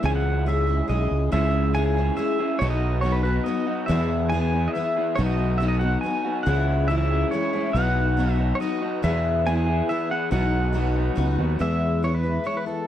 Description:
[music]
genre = folk rock and heartland rock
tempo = 140 BPM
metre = 3/4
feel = straight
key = E major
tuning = A4 = 440 Hz
[part]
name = picked twelve-string acoustic guitar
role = accompaniment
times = 0.0-12.9 s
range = E2 to G#4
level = -27 LUFS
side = left 6 dB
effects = none
[part]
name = tonewheel organ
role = sustained chords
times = 0.0-11.6 s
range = G#3 to C#5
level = -38 LUFS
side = right 2 dB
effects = none
[part]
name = electric guitar through a small old amp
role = riff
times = 0.0-11.6 s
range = E2 to G#4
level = -28 LUFS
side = right 1 dB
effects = none
[part]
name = fingered electric bass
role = bass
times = 0.0-12.4 s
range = B1 to E2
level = -23 LUFS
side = right 1 dB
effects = none
[part]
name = pedal steel guitar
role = melody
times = 0.1-12.9 s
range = A4 to G#5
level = -28 LUFS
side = right 1 dB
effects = none
[sound]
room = digital ambience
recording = dry, close 1970s-style studio recording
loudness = -21 LUFS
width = side -11 dB against mid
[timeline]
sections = 0.0-1.3 A section; 1.3-11.6 B section; 11.6-12.9 C section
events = none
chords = 0.0 C#m; 2.6 B; 3.9 E; 5.2 B; 6.5 C#m; 7.8 B; 9.0 E; 10.3 B; 11.6 E

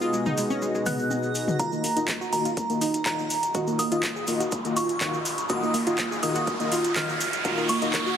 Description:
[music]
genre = progressive house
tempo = 123 BPM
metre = 4/4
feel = straight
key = Eb minor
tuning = A4 = 440 Hz
[part]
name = glassy synth bell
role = melody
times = 0.0-8.2 s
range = Bb5 to Gb6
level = -30 LUFS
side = right 1 dB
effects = chorus, sidechain pumping, digital delay
[part]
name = analog pluck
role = arpeggios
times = 0.0-8.2 s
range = Ab3 to Ab4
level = -28 LUFS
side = right 1 dB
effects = chorus, sidechain pumping, digital delay
[part]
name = soft supersaw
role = stabs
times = 0.0-8.0 s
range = Cb3 to Eb5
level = -29 LUFS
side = left 2 dB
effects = vintage 12-bit sampler grit, sidechain pumping, low-pass filter, digital delay
[part]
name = tube shaker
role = percussion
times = 0.0-8.2 s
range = none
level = -36 LUFS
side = left 2 dB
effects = none
[part]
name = backwards swelling texture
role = texture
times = 0.0-1.6 s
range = Bb6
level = -46 LUFS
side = right 4 dB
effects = built-in reverb, sidechain pumping
[part]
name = electronic toms and congas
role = percussion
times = 0.3-1.6 s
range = none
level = -32 LUFS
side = left 2 dB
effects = sidechain pumping on perc, sidechain pumping on toms
[part]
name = house drum kit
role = drums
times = 0.4-8.0 s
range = handclaps, hi-hat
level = -31 LUFS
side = equal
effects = overdrive, sidechain pumping on hats
[part]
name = electronic kick drum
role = drums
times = 1.6-8.0 s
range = none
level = -36 LUFS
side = right 1 dB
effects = overdrive, high-pass filter on kick, high-pass filter on room
[part]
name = riser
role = sound effects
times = 2.7-8.2 s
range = none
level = -32 LUFS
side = right 2 dB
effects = none
[sound]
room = moderate lush hall reverb, RT60 2.3 s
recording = heavily compressed radio sound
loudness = -23 LUFS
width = side -8 dB against mid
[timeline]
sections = 0.0-1.6 A section; 1.6-8.2 B section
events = build-up 1.6-8.2; filter sweep on synth pluck 1.6-8.2; filter sweep on supersaw synth 1.6-8.2; riser 2.7-8.2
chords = 0.0 Abm7/Cb; 1.6 Ebmadd9

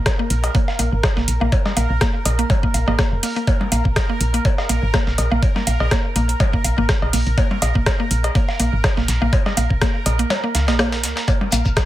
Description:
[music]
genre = minimal techno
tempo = 123 BPM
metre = 4/4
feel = swing 55% on 16ths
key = unclear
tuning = A4 = 440 Hz
[part]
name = woody FM bass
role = bass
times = 0.0-11.7 s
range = F1 to Db2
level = -19 LUFS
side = equal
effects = sidechain pumping
[part]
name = bubbling stepped-filter texture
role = texture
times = 0.0-11.9 s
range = Bb4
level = -28 LUFS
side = right 3 dB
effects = chorus, built-in reverb, sidechain pumping
[part]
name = dusty soul sampler-style drum kit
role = drums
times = 0.1-11.9 s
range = hi-hat, snare drum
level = -30 LUFS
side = equal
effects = sidechain pumping on hats, high-pass filter on hats, high-pass filter on snare
[part]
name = electronic kick drum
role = drums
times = 0.1-11.9 s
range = none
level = -18 LUFS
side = equal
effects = none
[part]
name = garage drum kit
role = drums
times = 0.1-11.9 s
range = hi-hat, rim click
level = -24 LUFS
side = equal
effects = none
[part]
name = percussion blips, cowbell and woodblock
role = percussion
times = 0.1-11.9 s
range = none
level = -26 LUFS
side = left 1 dB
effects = digital delay
[part]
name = mallet-like synth pluck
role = riff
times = 0.2-11.6 s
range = Bb3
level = -26 LUFS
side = equal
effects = chorus, vintage 12-bit sampler grit, sidechain pumping, digital delay
[part]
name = shekere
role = percussion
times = 11.3-11.9 s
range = none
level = -28 LUFS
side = left 4 dB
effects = none
[sound]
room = digital ambience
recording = none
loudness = -16 LUFS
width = side -14 dB against mid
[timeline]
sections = 0.0-11.9 A section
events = kick drops out 10.3-11.3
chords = 0.0 Bb5

